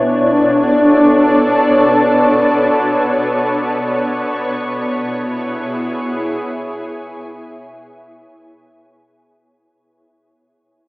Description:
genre	ambient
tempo	free time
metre	none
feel	none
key	unclear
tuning	A4 = 439 Hz
part	shimmering ambient pad	sustained chords	0.0-9.6 s	B2 to C#5	-13 LUFS	equal	chorus, built-in reverb
room	wet lush hall reverb, RT60 2.9 s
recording	AM radio sound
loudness	-12 LUFS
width	side -21 dB against mid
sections	0.0-9.6 A section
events	fade-out 1.7-9.6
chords	0.0 Bm7; 3.7 C#m7/B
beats	free time

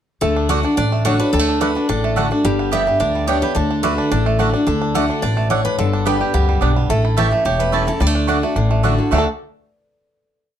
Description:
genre	bluegrass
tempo	216 BPM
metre	4/4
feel	straight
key	D major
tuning	A4 = 440 Hz
part	picked steel-string acoustic guitar	melody	0.2-8.8 s	G4 to F#5	-22 LUFS	left 1 dB	none
part	picked steel-string acoustic guitar	accompaniment	0.2-9.2 s	E2 to G4	-21 LUFS	left 2 dB	none
part	bluegrass banjo	arpeggios	0.2-9.3 s	D3 to A4	-23 LUFS	right 4 dB	none
part	upright bass	bass	0.2-9.3 s	E1 to D2	-20 LUFS	equal	none
part	mandolin	stabs	0.5-9.2 s	A3 to A5	-22 LUFS	right 6 dB	none
room	moderate studio reverb, RT60 0.6 s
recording	dark, warm production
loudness	-15 LUFS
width	side -10 dB against mid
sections	0.2-9.1 A section; 9.1-10.2 final chord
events	none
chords	0.2 D; 2.4 G; 3.6 D; 5.8 G; 6.9 A; 8.0 D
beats	| 0.22 0.50 0.78 1.06 | 1.33 1.61 1.89 2.17 | 2.45 2.72 3.00 3.28 | 3.56 3.83 4.11 4.39 | 4.67 4.95 5.22 5.50 | 5.78 6.06 6.34 6.62 | 6.89 7.17 7.45 7.73 | 8.01 8.29 8.56 8.84 | 9.12

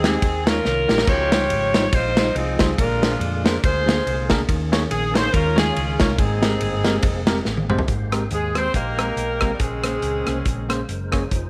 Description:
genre	uptempo gospel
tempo	141 BPM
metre	4/4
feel	swing 57% on 8ths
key	Ab major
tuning	A4 = 439 Hz
part	bright saxophone section	melody	0.0-10.9 s	C4 to Db5	-26 LUFS	equal	slapback echo
part	hollow-body short-scale fingered electric bass	bass	0.0-11.5 s	F1 to F2	-29 LUFS	equal	none
part	natural country drum kit	drums	0.0-11.4 s	crash cymbal, hi-hat, kick drum, ride cymbal, rim click, snare drum, toms	-24 LUFS	equal	none
part	bell-like tine electric piano	accompaniment	0.1-11.2 s	Ab2 to Db5	-28 LUFS	equal	none
part	percussive tonewheel organ	sustained chords	1.1-11.5 s	Db3 to G5	-34 LUFS	equal	none
part	breathy tenor saxophone	melody	8.3-10.9 s	G3 to C4	-30 LUFS	equal	none
room	light reverb, small room reverb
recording	none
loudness	-20 LUFS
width	mono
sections	0.0-7.9 A section; 7.9-11.5 B section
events	drum fill 0.7-1.1, 7.5-7.9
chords	0.2 Eb9sus4; 1.1 Dbmaj9#11; 2.8 Bb9; 4.5 Eb7sus4; 5.3 Eb9sus4; 6.2 Abmaj9; 9.6 Bbm9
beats	0.22 0.65 | 1.08 1.50 1.93 2.36 | 2.78 3.21 3.63 4.06 | 4.49 4.91 5.34 5.76 | 6.19 6.61 7.04 7.46 | 7.89 8.32 8.74 9.17 | 9.60 10.03 10.46 10.89 | 11.31

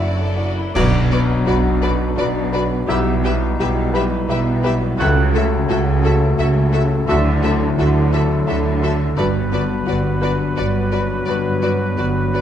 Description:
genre	cinematic, emotional film score for orchestra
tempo	85 BPM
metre	3/4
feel	rubato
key	unclear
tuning	A4 = 440 Hz
part	bright symphonic violin section	melody	0.0-12.4 s	D5 to E5	-30 LUFS	left 4 dB	none
part	clear symphonic violin section	second line	0.0-12.4 s	E4 to B4	-29 LUFS	left 4 dB	none
part	clear baby grand piano	accompaniment	0.0-12.4 s	B1 to E5	-23 LUFS	left 2 dB	none
part	clear symphonic viola section	accompaniment	0.0-12.4 s	E4 to G4	-29 LUFS	right 2 dB	none
part	concert harp	arpeggios	0.0-12.4 s	F#2 to F#5	-26 LUFS	left 6 dB	none
part	rich symphonic cello section	bass	0.0-12.4 s	F#2 to D3	-23 LUFS	right 3 dB	none
part	rich symphonic double bass section	bass	0.0-12.4 s	F#1 to D2	-21 LUFS	right 2 dB	none
part	clear oboe	second line	0.7-12.4 s	B4 to F#5	-26 LUFS	right 2 dB	none
part	warm clarinet	second line	0.8-12.4 s	F#4 to A4	-29 LUFS	left 1 dB	none
part	warm French horn section	sustained chords	0.8-12.4 s	F#3 to F#4	-25 LUFS	left 2 dB	none
part	clash cymbals and concert bass drum	percussion	0.8-2.1 s	none	-26 LUFS	equal	none
room	moderate scoring stage reverb, RT60 1.6 s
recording	dark, warm production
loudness	-15 LUFS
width	side -10 dB against mid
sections	0.7-12.4 A section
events	band accent 0.7-1.5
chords	0.0 Dadd9/F#; 0.7 Bm; 2.9 Em/B; 5.0 A6/C#; 7.1 Dadd9; 9.2 Gmaj7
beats	0.00 | 0.74 1.47 2.17 | 2.88 3.59 4.29 | 4.99 5.69 6.39 | 7.08 7.78 8.47 | 9.17 9.87 10.57 | 11.28 11.98

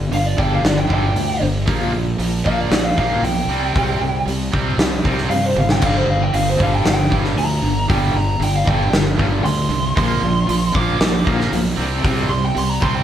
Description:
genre	hard rock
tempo	116 BPM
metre	4/4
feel	straight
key	G minor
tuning	A4 = 439 Hz
part	overdriven semi-hollow guitar	riff	0.0-13.0 s	G2 to C4	-25 LUFS	left 4 dB	tremolo
part	tight distorted guitar	riff	0.0-13.0 s	G2 to C4	-23 LUFS	right 5 dB	distortion
part	fuzz fingered electric bass	bass	0.0-13.0 s	G1 to G2	-22 LUFS	equal	overdrive
part	lead guitar through a small cranked amp	melody	0.1-13.0 s	C5 to D6	-22 LUFS	right 2 dB	overdrive
part	big rock drum kit	drums	0.1-12.9 s	crash cymbal, hi-hat, kick drum, snare drum, toms	-20 LUFS	equal	none
room	moderate stone room reverb, RT60 1.3 s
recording	band playing live in one room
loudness	-15 LUFS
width	side -10 dB against mid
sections	0.0-13.0 A section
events	lead electric guitar solo 0.0-13.0; drum fill 5.6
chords	0.0 G5; 1.7 Bb5; 3.5 C5; 5.8 G5; 10.0 Bb5; 11.8 C5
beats	0.12 0.64 1.16 | 1.68 2.20 2.72 3.24 | 3.75 4.27 4.79 5.31 | 5.83 6.34 6.86 7.38 | 7.89 8.41 8.93 9.45 | 9.97 10.48 11.00 11.52 | 12.04 12.56

